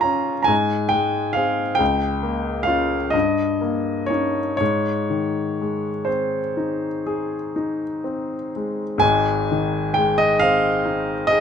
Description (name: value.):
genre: classical, romantic nocturne for solo piano.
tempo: 40-47 BPM (dotted quarters).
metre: 9/8.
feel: rubato.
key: Ab major.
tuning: A4 = 441 Hz.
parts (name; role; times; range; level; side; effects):
warm concert grand piano; solo; 0.0-11.4 s; Ab1 to C6; -19 LUFS; left 1 dB; none.
room: little or no reverb.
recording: close, detailed microphones.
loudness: -19 LUFS.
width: side -7 dB against mid.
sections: 0.0-9.0 A section; 9.0-11.4 A section.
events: none.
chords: 0.0 Db/Ab; 0.5 Ab; 1.8 Bbm/Db; 3.1 Eb7/G; 4.6 Ab.